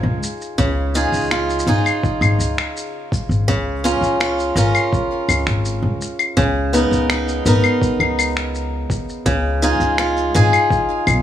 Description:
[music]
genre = folktronica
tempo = 83 BPM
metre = 4/4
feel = straight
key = Db mixolydian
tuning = A4 = 440 Hz
[part]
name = picked swing-style acoustic guitar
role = arpeggios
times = 0.0-11.2 s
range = Db3 to Bb4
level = -19 LUFS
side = equal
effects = digital delay
[part]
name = upright bass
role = bass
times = 0.0-11.2 s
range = Ab1 to Db2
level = -20 LUFS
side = equal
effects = tube saturation
[part]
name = electronic shaker, finger snaps and claves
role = drums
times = 0.2-11.2 s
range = none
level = -22 LUFS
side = left 3 dB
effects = overdrive, small room ambience
[part]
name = electronic kick drum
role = drums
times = 0.6-10.9 s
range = none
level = -22 LUFS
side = equal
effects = overdrive, small room ambience
[sound]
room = light reverb, studio reverb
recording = small room ambience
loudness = -16 LUFS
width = side -10 dB against mid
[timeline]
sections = 0.0-11.2 A section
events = none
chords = 0.0 Dbadd9; 3.5 Bbm7; 6.4 Cbmaj7; 9.3 Dbadd9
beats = | 0.59 1.31 2.03 2.75 | 3.48 4.20 4.92 5.65 | 6.37 7.09 7.82 8.54 | 9.26 9.98 10.71

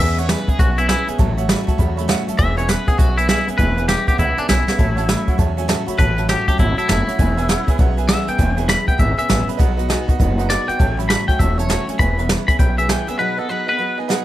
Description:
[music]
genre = rockabilly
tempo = 200 BPM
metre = 4/4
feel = swing 63% on 8ths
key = E major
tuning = A4 = 440 Hz
[part]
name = twangy electric guitar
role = melody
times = 0.0-14.0 s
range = D4 to B5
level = -21 LUFS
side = left 2 dB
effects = plate reverb, tape echo
[part]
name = bright upright piano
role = accompaniment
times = 0.0-14.2 s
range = B4 to B5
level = -26 LUFS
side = right 12 dB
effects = plate reverb
[part]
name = picked steel-string acoustic guitar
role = accompaniment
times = 0.0-14.2 s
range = A2 to G#4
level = -26 LUFS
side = left 4 dB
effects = none
[part]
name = upright bass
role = bass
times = 0.0-13.1 s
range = E1 to E2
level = -20 LUFS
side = equal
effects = none
[part]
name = jazz brush drum kit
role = drums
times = 0.2-14.2 s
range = hi-hat, kick drum, snare drum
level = -18 LUFS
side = equal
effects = none
[sound]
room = light reverb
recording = none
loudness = -15 LUFS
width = side -14 dB against mid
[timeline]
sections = 0.0-14.2 A section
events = drum fill 4.6; break 13.2-14.2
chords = 0.0 E6; 1.2 A6; 2.4 E6; 4.8 A6; 7.2 E6; 9.6 B6; 10.8 A6; 12.0 E6; 13.2 B6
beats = 0.29 0.59 0.89 | 1.19 1.49 1.79 2.09 | 2.39 2.69 2.99 3.29 | 3.59 3.89 4.19 4.49 | 4.79 5.09 5.39 5.69 | 5.99 6.29 6.59 6.89 | 7.19 7.49 7.79 8.09 | 8.39 8.69 8.99 9.29 | 9.59 9.89 10.20 10.49 | 10.80 11.10 11.40 11.70 | 12.00 12.30 12.60 12.90 | 13.20 13.50 13.80 14.10

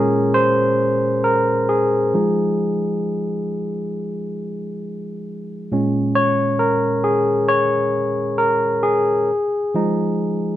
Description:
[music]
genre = R&B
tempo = 67 BPM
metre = 4/4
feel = swing 60% on 16ths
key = Bb minor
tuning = A4 = 437 Hz
[part]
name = barky tine electric piano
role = solo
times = 0.0-10.6 s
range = Bb2 to Db5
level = -17 LUFS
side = equal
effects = none
[sound]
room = light reverb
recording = band playing live in one room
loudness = -17 LUFS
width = side -13 dB against mid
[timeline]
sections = 0.0-10.6 A section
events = tine electric piano solo 0.0-10.6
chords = 0.0 Bbm9; 2.1 Fm7; 5.7 Bbm7; 9.3 Fm7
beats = 0.33 1.23 | 2.12 3.02 3.92 4.81 | 5.71 6.60 7.50 8.39 | 9.29 10.18

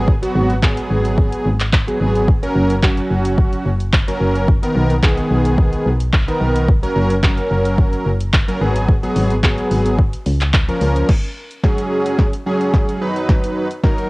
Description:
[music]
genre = dance-pop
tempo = 109 BPM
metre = 4/4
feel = straight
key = F# major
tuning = A4 = 445 Hz
[part]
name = big bright polysynth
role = accompaniment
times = 0.0-14.1 s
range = D#3 to B4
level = -19 LUFS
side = equal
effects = sidechain pumping, cassette tape
[part]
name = solid FM bass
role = bass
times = 0.0-11.0 s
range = F#1 to C#2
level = -19 LUFS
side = equal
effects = sidechain pumping
[part]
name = punchy analog drum machine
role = drums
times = 0.1-14.1 s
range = crash cymbal, handclaps, hi-hat, kick drum, snare drum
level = -15 LUFS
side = equal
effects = cassette tape
[sound]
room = digital ambience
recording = home recording on cassette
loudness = -14 LUFS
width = side -23 dB against mid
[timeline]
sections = 0.0-11.1 A section; 11.1-14.1 B section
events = build-up 11.1-14.1; drum fill 11.1-14.1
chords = 0.0 G#m7; 2.3 F#; 4.5 Bmaj7; 6.7 F#; 8.6 G#m7; 10.0 C#6; 11.1 F#sus2; 13.0 B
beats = | 0.08 0.63 1.18 1.73 | 2.28 2.83 3.38 3.93 | 4.48 5.03 5.58 6.13 | 6.68 7.23 7.78 8.34 | 8.88 9.44 9.99 10.54 | 11.09 11.64 12.19 12.74 | 13.29 13.84

